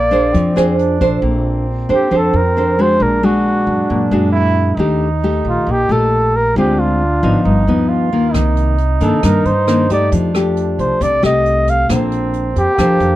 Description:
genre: bossa nova.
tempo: 135 BPM.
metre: 4/4.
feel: straight.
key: Bb major.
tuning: A4 = 440 Hz.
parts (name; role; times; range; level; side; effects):
warm flugelhorn; melody; 0.0-13.2 s; F4 to F5; -16 LUFS; equal; none.
bright trombone; second line; 0.0-13.2 s; Bb3 to F4; -23 LUFS; right 6 dB; none.
nylon-string guitar; accompaniment; 0.0-13.2 s; G2 to C5; -16 LUFS; left 1 dB; none.
upright bass; bass; 0.0-13.2 s; G1 to G2; -19 LUFS; equal; none.
jazz brush drum kit; drums; 0.1-1.1, 8.3-13.1 s; hi-hat, kick drum, rim click; -25 LUFS; equal; none.
room: little or no reverb.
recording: none.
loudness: -12 LUFS.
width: side -15 dB against mid.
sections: 0.0-1.2 A section; 1.2-13.2 B section.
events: none.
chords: 0.0 Bb9; 1.2 Bbmaj9; 3.0 Bbaug7; 4.8 Ebmaj7#11; 6.6 Dm7b5; 7.5 G7alt; 8.3 Cm9; 10.1 F9; 11.9 Bbmaj9.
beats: 0.34 0.78 | 1.23 1.67 2.11 2.56 | 3.00 3.45 3.89 4.34 | 4.78 5.23 5.67 6.12 | 6.56 7.00 7.45 7.89 | 8.34 8.78 9.23 9.67 | 10.12 10.56 11.01 11.45 | 11.89 12.34 12.78.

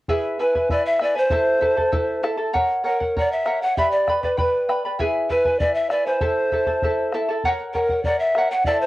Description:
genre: andean folk, Andean ensemble.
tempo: 98 BPM.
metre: 2/4.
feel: straight.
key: A dorian.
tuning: A4 = 441 Hz.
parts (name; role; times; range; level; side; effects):
charango; accompaniment; 0.1-8.9 s; E4 to B5; -23 LUFS; equal; cassette tape.
bombo; percussion; 0.1-8.8 s; none; -28 LUFS; left 1 dB; none.
breathy large pan pipes; melody; 0.4-8.9 s; A#4 to F#5; -20 LUFS; equal; none.
room: moderate studio reverb, RT60 0.6 s.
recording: home recording on cassette.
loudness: -18 LUFS.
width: side -17 dB against mid.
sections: 0.1-8.9 A section.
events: none.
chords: 0.1 E; 1.3 Am; 2.5 F#; 3.8 G; 5.0 E; 6.2 Am; 7.4 F#.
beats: | 0.08 0.69 | 1.30 1.92 | 2.53 3.15 | 3.76 4.37 | 4.98 5.60 | 6.21 6.82 | 7.43 8.05 | 8.66.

